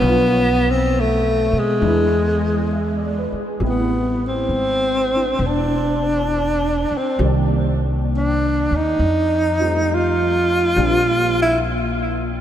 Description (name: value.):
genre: jazz ballad.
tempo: 67 BPM.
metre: 4/4.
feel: swing 69% on 8ths.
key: A minor.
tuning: A4 = 441 Hz.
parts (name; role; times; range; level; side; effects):
breathy tenor saxophone; melody; 0.0-11.6 s; G#3 to F4; -18 LUFS; equal; analog delay.
warm baby grand piano; accompaniment; 0.0-12.4 s; C3 to E5; -26 LUFS; equal; ensemble chorus.
upright bass; bass; 0.0-12.4 s; E1 to B2; -22 LUFS; equal; none.
room: moderate cathedral reverb, RT60 4.5 s.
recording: dreamy mix soaked in reverb.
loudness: -16 LUFS.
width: side -10 dB against mid.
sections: 0.0-3.6 A section; 3.6-12.4 B section.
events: tenor saxophone solo 3.6-12.4.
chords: 0.0 Bdim; 1.8 E7; 3.6 Am9; 7.2 Cm7; 9.0 F7; 10.8 Bb69.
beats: | 0.02 0.92 1.81 2.71 | 3.60 4.50 5.40 6.29 | 7.19 8.09 8.98 9.88 | 10.78 11.68.